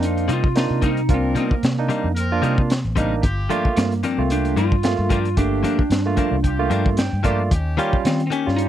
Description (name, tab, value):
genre	straight-eighth soul blues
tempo	112 BPM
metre	4/4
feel	swing 56% on 16ths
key	G minor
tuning	A4 = 440 Hz
part	lightly driven lead guitar	melody	0.0-8.7 s	Bb3 to F4	-24 LUFS	right 1 dB	none
part	barky tine electric piano	accompaniment	0.0-8.7 s	G3 to G5	-24 LUFS	right 6 dB	medium stereo tremolo
part	clear horn section	sustained chords	0.0-8.7 s	Bb3 to Bb4	-32 LUFS	left 2 dB	none
part	vintage muted fingered electric bass	bass	0.0-8.7 s	G1 to Eb3	-22 LUFS	equal	none
part	crunchy breakbeat drum kit	drums	0.0-8.7 s	hi-hat, kick drum, snare drum	-21 LUFS	equal	none
part	direct-recorded clean electric guitar	stabs	0.3-8.5 s	G2 to G4	-24 LUFS	left 7 dB	none
room	little or no reverb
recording	dry, close 1970s-style studio recording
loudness	-17 LUFS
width	side -11 dB against mid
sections	0.0-8.7 A section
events	tine electric piano fill 6.7-7.5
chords	0.0 Cm7; 3.2 Gm7; 7.5 Eb7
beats	0.03 0.56 | 1.10 1.63 2.17 2.70 | 3.24 3.77 4.31 4.84 | 5.38 5.91 6.45 6.98 | 7.52 8.05 8.59